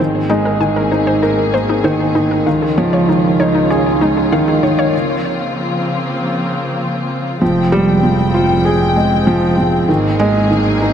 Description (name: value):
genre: piano and strings electronica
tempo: 97 BPM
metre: 4/4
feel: straight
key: F minor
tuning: A4 = 439 Hz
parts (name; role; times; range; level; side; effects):
- muted studio string section; sustained chords; 0.0-10.9 s; Db3 to G5; -19 LUFS; left 1 dB; low-pass filter
- warbly dusty pluck; arpeggios; 0.0-4.8 s; Eb4 to Ab5; -20 LUFS; left 2 dB; chorus, digital delay
- felt-muted upright piano; riff; 0.0-10.9 s; Eb3 to Bb4; -14 LUFS; right 1 dB; digital delay
- warm studio double bass section; bass; 0.0-10.9 s; F1 to Db2; -20 LUFS; equal; none
room: wet lush hall reverb, RT60 2.8 s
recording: none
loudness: -12 LUFS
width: side -8 dB against mid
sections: 0.0-7.4 A section; 7.4-10.9 B section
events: build-up 0.0-7.4; break 4.9-7.4; drop 7.4-10.9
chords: 0.0 Abadd9; 2.5 Dbadd9; 4.9 Bbmadd9; 7.4 Fmadd9; 9.9 Abadd9